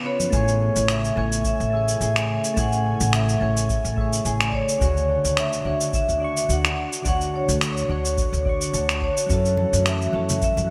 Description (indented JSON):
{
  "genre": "sunset chillout",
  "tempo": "107 BPM",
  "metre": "4/4",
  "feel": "swing 55% on 16ths",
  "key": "A major",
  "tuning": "A4 = 440 Hz",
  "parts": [
    { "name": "soft electric-piano-like synth keys", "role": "accompaniment", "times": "0.0-10.7 s", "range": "C#3 to C#6", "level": "-31 LUFS", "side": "equal", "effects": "chorus, tremolo, delay" },
    { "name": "ethereal airy pad", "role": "sustained chords", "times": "0.0-10.7 s", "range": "C#3 to G#5", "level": "-36 LUFS", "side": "equal", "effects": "none" },
    { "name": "vibraphone with medium hard mallets", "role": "melody", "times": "0.1-10.7 s", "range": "C#5 to F#5", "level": "-27 LUFS", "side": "equal", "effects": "vintage 12-bit sampler grit, delay" },
    { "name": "electronic cabasa and finger snaps", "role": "drums", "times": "0.2-10.7 s", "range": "none", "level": "-29 LUFS", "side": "equal", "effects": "gated reverb" },
    { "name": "congas", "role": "percussion", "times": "0.2-0.3, 9.6-10.7 s", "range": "none", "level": "-33 LUFS", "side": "equal", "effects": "none" },
    { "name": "concert harp", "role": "arpeggios", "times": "0.3-10.7 s", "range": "F#4 to A5", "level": "-37 LUFS", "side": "equal", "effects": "delay" },
    { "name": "upright bass", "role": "bass", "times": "0.3-10.7 s", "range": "A1 to F#2", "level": "-27 LUFS", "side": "equal", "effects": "none" },
    { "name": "electronic kick drum", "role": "drums", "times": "0.3-10.5 s", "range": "none", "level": "-29 LUFS", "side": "equal", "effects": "none" }
  ],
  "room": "moderate lush hall reverb, RT60 2.4 s",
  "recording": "bright 1980s-style digital production",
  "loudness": "-22 LUFS",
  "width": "mono",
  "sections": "0.3-10.7 A section",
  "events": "break 0.0-0.3",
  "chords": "0.3 Amaj7; 4.8 Dmaj7; 9.3 F#m7"
}